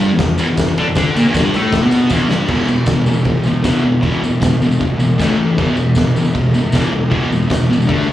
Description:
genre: garage rock duo or trio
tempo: 156 BPM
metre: 4/4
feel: straight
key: unclear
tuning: A4 = 440 Hz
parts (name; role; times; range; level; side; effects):
- thick fuzz guitar; riff; 0.0-8.1 s; E2 to D4; -14 LUFS; equal; distortion, slapback echo
- oversized low-tuned drum kit; drums; 0.0-8.0 s; crash cymbal, kick drum, ride cymbal, snare drum; -18 LUFS; equal; none
- tambourine; percussion; 0.2-8.1 s; none; -34 LUFS; left 1 dB; none
room: light reverb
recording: live gig heard through the venue's PA, club reverb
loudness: -12 LUFS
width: side -13 dB against mid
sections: 0.0-2.5 A section; 2.5-8.1 B section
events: drum fill 2.1-2.5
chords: 0.0 E5; 5.2 A5; 5.6 E5

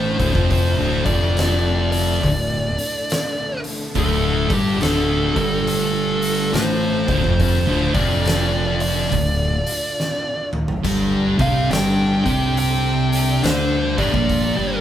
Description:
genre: stoner and doom metal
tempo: 70 BPM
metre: 4/4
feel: swing 64% on 8ths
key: D minor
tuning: A4 = 438 Hz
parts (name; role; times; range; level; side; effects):
- fuzz lead guitar; melody; 0.0-14.8 s; G4 to G5; -23 LUFS; equal; distortion
- string machine, violins; sustained chords; 0.0-14.8 s; D3 to A4; -32 LUFS; left 1 dB; none
- thick fuzz guitar; riff; 0.0-14.8 s; D2 to D4; -23 LUFS; left 6 dB; distortion
- thick fuzz guitar; riff; 0.0-14.8 s; D2 to D4; -22 LUFS; right 5 dB; distortion
- fuzz fingered electric bass; bass; 0.0-14.8 s; D1 to D2; -23 LUFS; equal; overdrive
- oversized low-tuned drum kit; drums; 0.2-14.5 s; hi-hat, kick drum, snare drum, splash cymbal, toms; -25 LUFS; equal; none
room: light reverb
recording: band playing live in one room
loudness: -17 LUFS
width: side -11 dB against mid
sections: 0.0-14.8 A section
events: drum fill 10.0-10.8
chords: 0.0 Dm; 10.8 G5

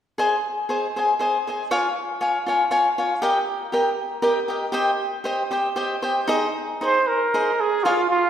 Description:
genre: mexican folk, mariachi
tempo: 118 BPM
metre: 3/4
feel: rubato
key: Ab major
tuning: A4 = 445 Hz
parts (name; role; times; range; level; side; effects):
- cavaquinho; accompaniment; 0.2-8.0 s; Eb4 to Ab5; -21 LUFS; left 1 dB; none
- clear trumpet; melody; 6.9-8.3 s; F4 to C5; -18 LUFS; right 3 dB; none
room: wet scoring stage reverb, RT60 2.0 s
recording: heard from further back in the room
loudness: -20 LUFS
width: side -9 dB against mid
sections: 0.2-6.3 A section; 6.3-8.3 B section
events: none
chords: 0.2 Ab; 1.7 Db; 3.2 Eb; 4.7 Cm; 6.3 Ab

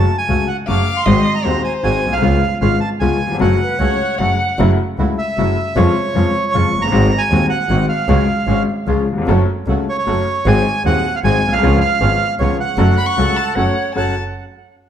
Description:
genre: tango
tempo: 154 BPM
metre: 3/4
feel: rubato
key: F# harmonic minor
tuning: A4 = 439 Hz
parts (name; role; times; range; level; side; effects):
- bandoneon; melody; 0.0-14.1 s; C#5 to D6; -20 LUFS; right 3 dB; analog delay
- clear upright piano; accompaniment; 0.0-14.1 s; D#1 to A4; -18 LUFS; left 4 dB; none
- bandoneon; stabs; 0.0-14.1 s; G#3 to F#4; -28 LUFS; right 4 dB; none
- clear double bass; bass; 0.0-14.1 s; F#1 to E#2; -18 LUFS; right 2 dB; none
- warm violin; second line; 0.7-4.6, 13.0-14.1 s; B#4 to C#6; -22 LUFS; left 3 dB; none
- silver concert flute; second line; 3.6-4.6, 13.2-14.1 s; A4 to F#5; -24 LUFS; right 3 dB; none
room: wet large studio reverb, RT60 1.2 s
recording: dark, warm production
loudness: -13 LUFS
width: side -9 dB against mid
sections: 0.0-4.6 A section; 4.6-14.0 B section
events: none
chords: 0.0 F#m; 1.1 G#7; 2.2 C#7; 3.4 F#m; 4.6 F#m7; 5.8 C#/E#; 6.9 G#7; 8.1 C#sus4; 8.9 C#; 9.3 F#m; 10.5 G#7; 11.6 C#7; 12.8 F#m

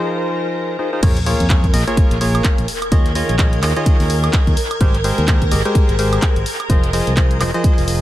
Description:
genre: piano house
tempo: 127 BPM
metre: 4/4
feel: swing 59% on 16ths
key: Bb dorian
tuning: A4 = 436 Hz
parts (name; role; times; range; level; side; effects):
- string machine, violins; sustained chords; 0.0-8.0 s; Bb4 to Ab6; -25 LUFS; equal; ensemble chorus, vintage 12-bit sampler grit, sidechain pumping
- percussive organ stab; riff; 0.0-8.0 s; Eb3 to Eb5; -21 LUFS; equal; chorus, cassette tape, sidechain pumping, tape echo
- fingered electric bass; bass; 1.0-8.0 s; F1 to F2; -19 LUFS; equal; sidechain pumping
- electronic kick drum; drums; 1.0-7.8 s; none; -15 LUFS; equal; none
- punchy analog drum machine; drums; 1.0-8.0 s; crash cymbal, handclaps, hi-hat, woodblock; -24 LUFS; right 1 dB; tape echo
- sub drop; sound effects; 1.0-2.9 s; none; -25 LUFS; equal; none
room: light reverb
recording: echo-heavy mix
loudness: -14 LUFS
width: side -14 dB against mid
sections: 0.0-1.0 A section; 1.0-8.0 B section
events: drop 1.0-8.0; impact 1.0-2.9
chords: 0.0 Fm7; 1.0 Bbm7; 4.6 Abmaj9; 6.5 Fm7

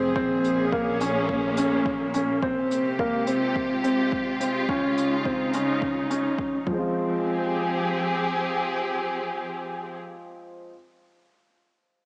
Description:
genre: piano and strings electronica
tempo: 106 BPM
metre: 4/4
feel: straight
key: F minor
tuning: A4 = 440 Hz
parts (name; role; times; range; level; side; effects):
- dark studio string section; sustained chords; 0.0-10.0 s; Bb2 to Ab4; -27 LUFS; equal; sidechain pumping
- warm upright piano; riff; 0.0-10.7 s; F3 to F4; -25 LUFS; equal; tape echo
- rich chamber double bass section; bass; 0.0-2.4 s; F1 to Bb1; -34 LUFS; equal; sidechain pumping
- electronic kick drum; drums; 0.2-6.8 s; none; -34 LUFS; equal; overdrive
- hi-hat; drums; 0.4-6.2 s; none; -39 LUFS; left 1 dB; none
room: moderate lush hall reverb, RT60 2.0 s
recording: small speaker sound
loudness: -22 LUFS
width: side -32 dB against mid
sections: 0.0-7.0 A section; 7.0-9.2 B section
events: none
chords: 0.2 Bbm7; 2.4 Fmadd9/C; 4.7 Dbadd9; 6.7 Fm; 7.0 Fmadd9

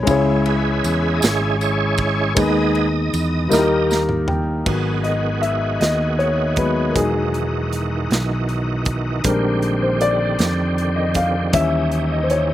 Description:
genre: slow gospel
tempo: 52 BPM (dotted quarters)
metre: 6/8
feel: straight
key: G# minor from 4.7 s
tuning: A4 = 440 Hz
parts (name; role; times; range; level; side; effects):
- warm grand piano; accompaniment; 0.0-12.5 s; C#3 to A#5; -20 LUFS; left 3 dB; slapback echo
- fingered electric bass; bass; 0.0-12.5 s; E1 to E#2; -22 LUFS; right 1 dB; none
- bright tonewheel organ; sustained chords; 0.1-12.5 s; D3 to D#5; -23 LUFS; right 2 dB; slow rotary speaker, overdrive, chorus vibrato
- modern studio drum kit; drums; 0.1-12.5 s; crash cymbal, hi-hat, kick drum, ride cymbal, snare drum, toms; -23 LUFS; right 1 dB; none
- tambourine; percussion; 0.1-4.3 s; none; -30 LUFS; right 8 dB; none
room: little or no reverb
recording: recorded outdoors, with no room sound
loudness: -17 LUFS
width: side -13 dB against mid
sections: 0.0-4.7 A section; 4.7-12.5 B section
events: tonewheel organ solo 0.0-4.7; drum fill 3.5-4.7; grand piano fill 3.5-4.7; grand piano solo 4.7-12.5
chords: 0.1 C#m; 2.4 G#m/D#; 3.5 D#; 4.7 G#m9; 7.0 Emaj9; 9.3 A#13; 11.5 D#7b9

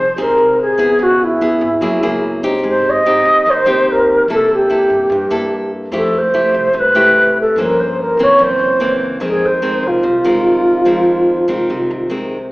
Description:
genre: bossa nova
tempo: 146 BPM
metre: 4/4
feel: straight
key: F minor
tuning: A4 = 440 Hz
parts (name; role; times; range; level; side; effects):
- reedy wooden-headed alto flute; melody; 0.0-12.1 s; Fb4 to Eb5; -12 LUFS; equal; none
- nylon-string guitar; accompaniment; 0.0-12.5 s; F2 to A4; -18 LUFS; equal; none
- upright bass; bass; 0.0-12.5 s; Ab1 to Db3; -34 LUFS; equal; none
room: wet recital hall reverb, RT60 1.5 s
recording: recorded in a church or concert hall, AM radio sound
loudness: -11 LUFS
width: side -21 dB against mid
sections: 0.0-12.5 A section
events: none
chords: 0.0 Fm7; 1.0 Dbm7; 1.8 Gb9; 2.6 Abmaj7; 4.3 C6; 5.9 Fmaj9; 7.6 Gm7b5; 8.4 Gb7#11; 9.2 Fm7

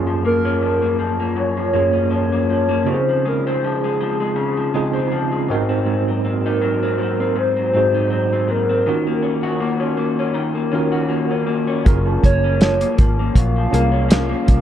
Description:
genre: indie pop, bedroom pop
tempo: 80 BPM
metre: 4/4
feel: swing 55% on 16ths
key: unclear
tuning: A4 = 440 Hz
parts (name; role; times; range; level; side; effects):
- electric guitar through a small old amp; accompaniment; 0.0-14.6 s; Gb2 to Gb4; -21 LUFS; left 4 dB; analog chorus, vibrato effect
- tine electric piano; accompaniment; 0.0-14.6 s; Gb2 to Bb4; -22 LUFS; right 3 dB; overdrive, fast stereo tremolo
- hollow clarinet-like synth lead; melody; 0.3-14.6 s; Ab4 to F5; -21 LUFS; equal; lush chorus
- vintage muted fingered electric bass; bass; 11.9-14.6 s; Gb1 to C2; -19 LUFS; equal; none
- cloth-damped thuddy drum kit; drums; 11.9-14.6 s; hi-hat, kick drum, snare drum; -15 LUFS; equal; none
room: light reverb, studio ambience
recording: dark, warm production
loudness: -16 LUFS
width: side -10 dB against mid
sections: 0.0-14.6 A section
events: none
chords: 0.0 Gbmaj7; 2.9 Dbmaj7; 5.5 Ab7; 8.9 Ebm7; 11.9 Gbmaj7

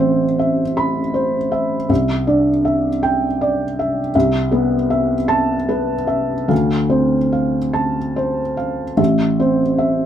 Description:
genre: neoclassical minimalist piano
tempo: 71-81 BPM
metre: 3/4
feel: rubato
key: A minor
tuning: A4 = 440 Hz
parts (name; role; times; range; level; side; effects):
- felt-muted upright piano; solo; 0.0-10.1 s; A1 to B5; -15 LUFS; equal; none
room: moderate small room reverb, RT60 0.5 s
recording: band playing live in one room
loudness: -15 LUFS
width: side -10 dB against mid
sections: 0.0-10.1 A section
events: none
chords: 0.0 Amadd9; 1.9 Cadd9; 4.1 Amadd9/C; 6.5 Dm7; 9.0 Am

